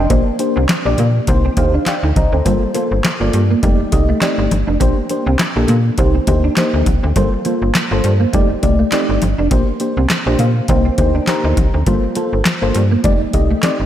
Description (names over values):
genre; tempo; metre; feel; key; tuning
early-eighties boogie funk; 102 BPM; 4/4; swing 56% on 16ths; G minor; A4 = 441 Hz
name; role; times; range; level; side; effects
mellow FM electric piano; accompaniment; 0.0-13.9 s; A3 to Bb5; -18 LUFS; left 1 dB; chorus, phaser
clean electric guitar; riff; 0.0-13.7 s; G3 to Eb4; -22 LUFS; right 2 dB; ensemble chorus
slap-like FM bass; bass; 0.0-13.9 s; F1 to Bb2; -16 LUFS; equal; none
booming analog drum machine; drums; 0.1-13.8 s; handclaps, hi-hat, kick drum, snare drum; -18 LUFS; equal; none
congas; percussion; 0.1-13.8 s; none; -26 LUFS; left 2 dB; none
room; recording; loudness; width
moderate lush hall reverb, RT60 1.9 s, digital ambience; dreamy mix soaked in reverb; -13 LUFS; side -11 dB against mid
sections
0.0-13.9 A section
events
FM electric piano fill 1.3-2.5, 10.1-11.9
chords
0.1 Bb69; 1.3 Cm7; 2.5 Gm11; 3.6 F13; 4.8 Bb69; 6.0 Cm7; 7.2 Gm11; 8.3 F13; 9.5 Bb69; 10.7 Cm7; 11.9 Gm11; 13.0 F13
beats
| 0.10 0.69 1.28 1.87 | 2.45 3.04 3.63 4.22 | 4.81 5.39 5.98 6.57 | 7.16 7.75 8.34 8.93 | 9.51 10.10 10.69 11.28 | 11.87 12.45 13.04 13.63